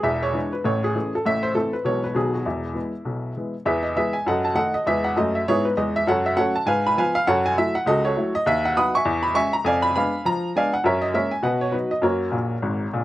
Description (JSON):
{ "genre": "jazz, stride piano", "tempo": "200 BPM", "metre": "4/4", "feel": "swing 60% on 8ths", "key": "E major, B major from 8.4 s", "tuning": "A4 = 440 Hz", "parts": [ { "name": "clear upright piano", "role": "solo", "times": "0.0-13.0 s", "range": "E1 to D#6", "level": "-20 LUFS", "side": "equal", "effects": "none" } ], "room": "little or no reverb", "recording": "recorded outdoors, with no room sound", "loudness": "-20 LUFS", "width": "side -15 dB against mid", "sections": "0.0-3.7 A section; 3.7-13.0 B section", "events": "upright piano fill 12.3-13.0", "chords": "0.1 E7; 0.7 A; 1.3 Am; 1.9 E/B; 2.2 B; 2.5 E; 4.3 D#dim/F#; 4.9 E; 6.1 F#m; 6.7 Fdim/Ab; 7.3 F#m7; 8.4 B/D#; 9.0 C#m/E; 9.6 Fdim7; 10.8 F#add9; 11.4 B; 12.0 F#" }